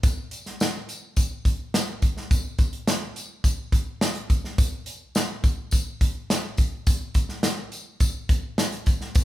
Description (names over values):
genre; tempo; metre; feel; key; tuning
soul; 105 BPM; 4/4; straight; none; none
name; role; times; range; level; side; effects
natural country drum kit; drums; 0.0-9.2 s; hi-hat, kick drum, snare drum; -22 LUFS; equal; none
tambourine; percussion; 0.0-9.2 s; none; -37 LUFS; left 2 dB; none
room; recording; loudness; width
light reverb; band playing live in one room; -22 LUFS; side -15 dB against mid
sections
0.0-9.2 A section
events
none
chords
none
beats
| 0.04 0.60 1.17 1.74 | 2.31 2.88 3.45 4.02 | 4.59 5.16 5.73 6.30 | 6.87 7.45 8.02 8.59 | 9.16